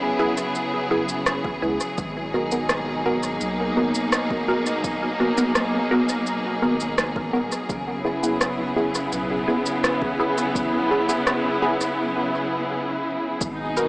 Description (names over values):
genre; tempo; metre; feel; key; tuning
ambient dub; 84 BPM; 4/4; straight; unclear; A4 = 441 Hz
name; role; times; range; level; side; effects
clear symphonic string section; sustained chords; 0.0-13.9 s; B2 to G#4; -23 LUFS; equal; vintage 12-bit sampler grit
filtered dub chord stab; stabs; 0.2-13.9 s; B3 to A#4; -25 LUFS; equal; phaser, dub echo
electronic shaker and rim click; drums; 0.4-13.9 s; none; -27 LUFS; equal; dub echo
warm sub bass; bass; 0.9-13.9 s; D#1 to C#2; -35 LUFS; equal; none
electronic kick drum; drums; 1.4-13.6 s; none; -31 LUFS; equal; none
room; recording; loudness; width
moderate huge ambient reverb, RT60 6.8 s; small speaker sound; -20 LUFS; side -24 dB against mid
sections
0.0-13.4 A section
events
break 12.0-13.4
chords
0.0 F#9sus4; 2.0 G#m9; 7.7 F#9sus4